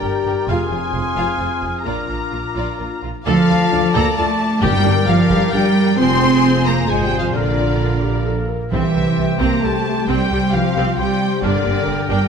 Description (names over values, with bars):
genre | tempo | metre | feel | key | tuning
cinematic, heroic adventure film score | 132 BPM | 3/4 | straight | C mixolydian | A4 = 439 Hz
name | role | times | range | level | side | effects
dark symphonic violin section | melody | 0.0-12.3 s | D5 to C6 | -25 LUFS | left 4 dB | none
dark clarinet | second line | 0.0-12.3 s | F4 to Bb4 | -29 LUFS | left 1 dB | none
small flute group | second line | 0.0-12.3 s | G5 to D6 | -28 LUFS | left 1 dB | none
warm oboe | second line | 0.0-12.3 s | Bb4 to F5 | -29 LUFS | left 1 dB | none
warm symphonic violin section | second line | 0.0-12.3 s | F4 to C6 | -28 LUFS | left 4 dB | none
warm symphonic viola section | accompaniment | 0.0-12.3 s | E3 to D5 | -26 LUFS | right 2 dB | none
dark French horn section | sustained chords | 0.0-12.3 s | D3 to G4 | -23 LUFS | left 3 dB | none
concert harp | arpeggios | 0.0-12.3 s | F2 to D6 | -26 LUFS | left 10 dB | none
dark trumpet section | stabs | 0.0-3.0 s | Ab4 to Bb4 | -29 LUFS | equal | none
rich symphonic double bass section | bass | 0.0-12.2 s | F1 to D2 | -22 LUFS | right 3 dB | none
warm studio cello section | bass | 0.0-12.3 s | F2 to C4 | -21 LUFS | right 4 dB | none
timpani | percussion | 4.6-5.3, 8.7-9.4 s | G2 to C3 | -25 LUFS | left 1 dB | none
room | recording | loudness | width
moderate scoring stage reverb, RT60 1.9 s | none | -15 LUFS | side -6 dB against mid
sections
0.0-3.3 A section; 3.3-12.3 B section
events
none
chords
0.5 Fm; 1.9 Bb; 3.3 Dm; 4.6 Gm; 6.0 Fm; 7.3 Bb; 8.7 C; 11.4 Gm